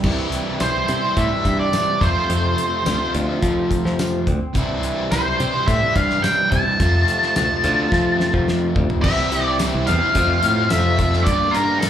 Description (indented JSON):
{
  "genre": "classic rock",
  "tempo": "107 BPM",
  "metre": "4/4",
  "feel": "straight",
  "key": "unclear",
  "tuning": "A4 = 439 Hz",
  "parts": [
    { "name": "crunchy overdriven guitar", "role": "riff", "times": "0.0-11.9 s", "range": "F2 to G4", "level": "-26 LUFS", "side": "left 7 dB", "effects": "harmonic tremolo, slapback echo" },
    { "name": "overdriven semi-hollow guitar", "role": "riff", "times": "0.0-11.9 s", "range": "F2 to G4", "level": "-25 LUFS", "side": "right 8 dB", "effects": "slapback echo" },
    { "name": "modern bright picked electric bass", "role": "bass", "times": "0.0-11.8 s", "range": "C2 to F3", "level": "-21 LUFS", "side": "equal", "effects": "none" },
    { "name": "damped 70s drum kit", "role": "drums", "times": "0.0-11.9 s", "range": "crash cymbal, hi-hat, kick drum, snare drum, tambourine, toms", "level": "-24 LUFS", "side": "equal", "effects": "none" },
    { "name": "octave-fuzz lead guitar", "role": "melody", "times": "0.6-11.9 s", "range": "A4 to A5", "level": "-20 LUFS", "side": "equal", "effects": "distortion, plate reverb, slapback echo" },
    { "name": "tonewheel organ", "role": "sustained chords", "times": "9.0-11.9 s", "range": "Bb3 to C5", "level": "-34 LUFS", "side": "equal", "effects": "none" }
  ],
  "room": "light reverb",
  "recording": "live gig heard through the venue's PA, club reverb",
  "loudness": "-16 LUFS",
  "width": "side -10 dB against mid",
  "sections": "0.0-9.0 A section; 9.0-11.9 B section",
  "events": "drum fill 7.9-9.0",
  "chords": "0.0 C; 2.0 F; 4.5 C; 6.8 F; 9.0 C; 10.2 F; 11.3 Gm",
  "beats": "| 0.04 0.60 1.17 1.73 | 2.30 2.86 3.42 3.99 | 4.55 5.11 5.67 6.23 | 6.79 7.36 7.92 8.48 | 9.04 9.60 10.15 10.71 | 11.27 11.83"
}